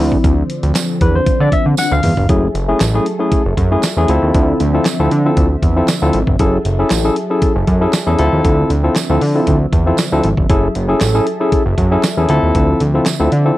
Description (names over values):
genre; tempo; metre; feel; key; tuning
early-eighties boogie funk; 117 BPM; 4/4; straight; unclear; A4 = 436 Hz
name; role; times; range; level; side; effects
barky tine electric piano; accompaniment; 0.0-13.6 s; F3 to F#5; -16 LUFS; left 2 dB; overdrive
brassy analog pad; sustained chords; 0.0-13.6 s; D3 to E5; -22 LUFS; right 1 dB; chorus, phaser
fat analog bass; bass; 0.0-13.5 s; F#1 to D3; -15 LUFS; equal; none
dusty soul sampler-style drum kit; drums; 0.1-13.4 s; handclaps, hi-hat, kick drum, snare drum, toms; -18 LUFS; equal; none
tambourine; percussion; 0.8-13.2 s; none; -25 LUFS; right 17 dB; none
room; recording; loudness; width
little or no reverb; dry, close 1970s-style studio recording; -12 LUFS; side -16 dB against mid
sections
0.0-2.3 A section; 2.3-13.6 B section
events
tine electric piano solo 0.0-2.3; drum fill 1.8-2.3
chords
0.0 Dm9; 2.3 F#m9; 4.1 Dm9; 6.4 F#m9; 8.2 Dm9; 10.5 F#m9; 12.3 Dm9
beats
| 0.24 0.75 1.27 1.78 | 2.29 2.81 3.32 3.83 | 4.34 4.86 5.37 5.88 | 6.39 6.91 7.42 7.93 | 8.45 8.96 9.47 9.98 | 10.50 11.01 11.52 12.04 | 12.55 13.06 13.57